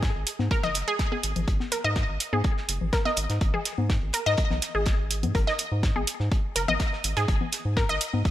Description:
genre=minimal techno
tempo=124 BPM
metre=4/4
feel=straight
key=unclear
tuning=A4 = 440 Hz
part: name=round analog bass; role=bass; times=0.0-8.2 s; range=F#1 to G#2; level=-28 LUFS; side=equal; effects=sidechain pumping
part: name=cloth-damped thuddy drum kit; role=drums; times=0.0-8.3 s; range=hi-hat, snare drum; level=-38 LUFS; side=left 1 dB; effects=high-pass filter on hats, high-pass filter on snare, high-pass filter on room
part: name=electronic kick drum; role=drums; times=0.0-8.3 s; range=none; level=-26 LUFS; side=equal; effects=none
part: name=electronic hi-hat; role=drums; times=0.3-8.1 s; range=none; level=-28 LUFS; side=right 4 dB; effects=none
part: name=congas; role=percussion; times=0.4-8.2 s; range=none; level=-34 LUFS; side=left 7 dB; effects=ping-pong delay
part: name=resonant blip pluck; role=riff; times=0.5-7.9 s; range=G#4 to D#5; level=-29 LUFS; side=equal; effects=chorus, sidechain pumping, ping-pong delay
room=light reverb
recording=bright 1980s-style digital production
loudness=-23 LUFS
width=side -13 dB against mid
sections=0.0-8.3 A section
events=none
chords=0.0 G#5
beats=0.03 0.51 0.99 | 1.48 1.96 2.44 2.93 | 3.41 3.90 4.38 4.86 | 5.35 5.83 6.32 6.80 | 7.28 7.77 8.25

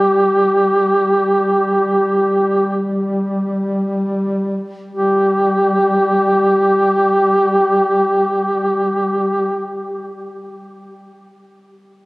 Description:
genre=caucasian folk, Caucasian lament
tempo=free time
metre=none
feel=none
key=unclear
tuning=A4 = 439 Hz
part: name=warm duduk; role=melody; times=0.0-9.6 s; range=G4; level=-15 LUFS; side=equal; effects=none
part: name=dark duduk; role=drone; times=0.0-9.7 s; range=G3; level=-21 LUFS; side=equal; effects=none
room=wet cathedral reverb, RT60 4.8 s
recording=recorded on a phone in the room, studio reverb, compression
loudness=-13 LUFS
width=side -23 dB against mid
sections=0.0-4.9 A section; 4.9-8.9 B section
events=slowing down 0.0-4.9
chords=none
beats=free time

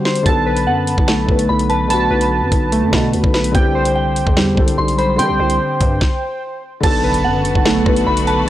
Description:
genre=hip hop, drill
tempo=146 BPM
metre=4/4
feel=half-time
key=B phrygian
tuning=A4 = 440 Hz
part: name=felt-muted upright piano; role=accompaniment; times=0.0-8.5 s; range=D3 to B4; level=-20 LUFS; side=left 2 dB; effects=low-pass filter
part: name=warbly lo-fi synth keys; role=arpeggios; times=0.0-8.5 s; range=G3 to A5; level=-18 LUFS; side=right 1 dB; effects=chorus, low-pass filter, tape echo
part: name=drill drum kit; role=drums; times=0.1-8.4 s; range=crash cymbal, hi-hat, kick drum, rim click, snare drum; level=-18 LUFS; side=equal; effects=vintage 12-bit sampler grit
part: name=growling 808-style bass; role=bass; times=0.3-8.5 s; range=B1 to E3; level=-21 LUFS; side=equal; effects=none
part: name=soft synth bell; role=second line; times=0.7-8.5 s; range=F#5 to C6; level=-22 LUFS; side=equal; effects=chorus, tape echo
part: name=rich symphonic string section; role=sustained chords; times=6.8-8.5 s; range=D3 to F#4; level=-25 LUFS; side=left 1 dB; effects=none
part: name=impact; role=sound effects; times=7.0-8.5 s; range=none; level=-28 LUFS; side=equal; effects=none
room=little or no reverb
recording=dry, gritty hardware recording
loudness=-13 LUFS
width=side -13 dB against mid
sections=0.0-6.8 A section; 6.8-8.5 B section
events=break 0.0; stop 6.0-6.8; impact 6.8-8.5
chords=0.3 Bm7; 3.5 Csus2; 6.8 Bm7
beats=| 0.26 0.67 1.08 1.49 | 1.90 2.31 2.72 3.13 | 3.55 3.96 4.37 4.78 | 5.19 5.60 6.01 6.42 | 6.83 7.25 7.66 8.07 | 8.48

